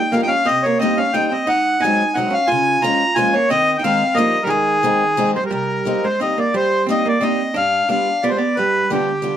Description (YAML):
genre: musette waltz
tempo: 178 BPM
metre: 3/4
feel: swing 54% on 8ths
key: Ab major, C minor from 5.5 s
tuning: A4 = 440 Hz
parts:
  - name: accordion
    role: melody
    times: 0.0-9.4 s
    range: G4 to Bb5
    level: -17 LUFS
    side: left 1 dB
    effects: none
  - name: archtop guitar, miked and amplified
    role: second line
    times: 0.0-9.4 s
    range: D3 to F4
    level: -22 LUFS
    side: right 4 dB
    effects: none
  - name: picked acoustic archtop guitar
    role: accompaniment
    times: 0.1-9.4 s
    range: G2 to F4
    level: -22 LUFS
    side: left 2 dB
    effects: none
room: moderate small room ambience, RT60 0.5 s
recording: none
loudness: -15 LUFS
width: side -10 dB against mid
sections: 0.0-5.5 A section; 5.5-9.4 B section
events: none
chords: 0.5 Cm7; 1.5 Ab7; 2.5 Db6; 3.5 Ab/Eb; 4.2 Ebadd9; 4.5 Ab; 5.5 Cm7; 7.5 G7